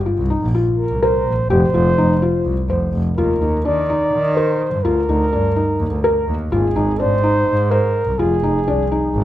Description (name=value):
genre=contemporary instrumental, chamber music in an uneven meter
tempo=251 BPM (eighths)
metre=7/8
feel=straight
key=unclear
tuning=A4 = 436 Hz
part: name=felt-muted upright piano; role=arpeggios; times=0.1-9.2 s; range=D4 to C5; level=-20 LUFS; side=left 2 dB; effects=none
part: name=clear double bass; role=bass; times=0.2-9.2 s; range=F1 to Eb3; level=-18 LUFS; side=equal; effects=none
part: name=breathy flugelhorn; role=melody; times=0.8-9.2 s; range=Ab4 to D5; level=-20 LUFS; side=right 2 dB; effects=none
room=light reverb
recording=close, detailed microphones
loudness=-15 LUFS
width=side -13 dB against mid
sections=0.0-3.2 A section; 3.2-9.2 B section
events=none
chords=0.0 Ebsus2 (rootless); 1.5 F5; 3.2 Ebmaj7(no3); 6.5 Ab